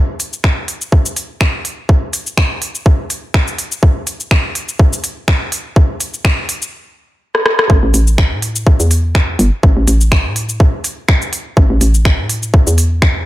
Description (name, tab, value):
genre	minimal techno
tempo	124 BPM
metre	4/4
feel	swing 55% on 16ths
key	unclear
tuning	A4 = 440 Hz
part	garage drum kit	drums	0.2-13.1 s	cabasa, finger snaps, hi-hat, rim click	-17 LUFS	equal	high-pass filter on snare, high-pass filter on hats, high-pass filter on perc, high-pass filter on room
part	electronic kick drum	drums	0.4-13.1 s	none	-12 LUFS	equal	none
part	hollow knocking FM bass	bass	7.7-13.2 s	G1 to A2	-14 LUFS	equal	sidechain pumping
room	little or no reverb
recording	none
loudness	-12 LUFS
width	side -16 dB against mid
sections	0.0-7.7 A section; 7.7-13.3 B section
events	build-up 0.0-7.7; drum fill 7.3-7.7; drop 7.7-13.3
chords	none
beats	0.44 0.92 1.41 | 1.89 2.38 2.86 3.34 | 3.83 4.31 4.79 5.28 | 5.76 6.25 6.73 7.21 | 7.70 8.18 8.67 9.15 | 9.63 10.12 10.60 11.09 | 11.57 12.05 12.54 13.02